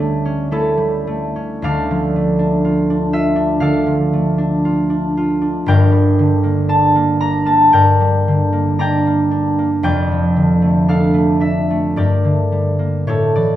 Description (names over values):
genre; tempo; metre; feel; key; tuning
classical, solo harp piece; 50-62 BPM; 4/4; rubato; D minor; A4 = 442 Hz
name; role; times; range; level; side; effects
concert harp; solo; 0.0-13.6 s; F1 to Bb5; -13 LUFS; equal; none
room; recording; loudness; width
moderate recital hall reverb, RT60 1.6 s; close, detailed microphones; -13 LUFS; side -12 dB against mid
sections
0.0-13.6 A section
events
none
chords
0.0 A7/D; 1.6 Dm; 5.7 Gm; 9.8 Dm/F; 12.0 Gm6